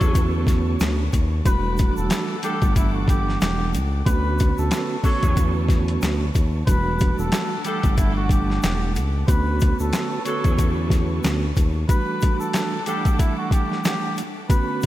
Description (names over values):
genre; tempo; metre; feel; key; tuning
hip hop, boom-bap hip-hop; 92 BPM; 4/4; swing 58% on 16ths; E dorian; A4 = 441 Hz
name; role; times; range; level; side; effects
trumpet with cup mute; melody; 0.0-14.9 s; E4 to C#5; -28 LUFS; left 1 dB; high-pass filter, low-pass filter, tape echo
mellow tonewheel organ; accompaniment; 0.0-14.9 s; D3 to F#5; -26 LUFS; right 4 dB; chorus vibrato, stopped rotary speaker, cassette tape, high-pass filter, low-pass filter
warm studio string section; sustained chords; 0.0-14.9 s; A4 to D6; -36 LUFS; equal; high-pass filter, low-pass filter
clear saxophone section; stabs; 0.0-13.1 s; F#3 to A4; -35 LUFS; left 3 dB; high-pass filter, low-pass filter, tape echo
smooth synth bass; bass; 0.0-11.9 s; E1 to E2; -23 LUFS; equal; none
boom bap sampler-style drum kit; drums; 0.0-14.9 s; handclaps, hi-hat, kick drum, snare drum; -21 LUFS; equal; none
tube shaker; percussion; 0.0-14.9 s; none; -43 LUFS; left 4 dB; none
room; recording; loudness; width
light reverb, studio ambience; none; -19 LUFS; side -14 dB against mid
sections
0.0-14.9 A section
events
none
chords
0.0 Bm9; 1.5 Em11; 4.1 Bm9/D; 6.7 Em11; 9.3 Bm9/D; 11.9 Em11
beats
0.15 0.80 | 1.45 2.11 2.76 3.41 | 4.06 4.71 5.37 6.02 | 6.67 7.32 7.97 8.63 | 9.28 9.93 10.58 11.24 | 11.89 12.54 13.19 13.85 | 14.50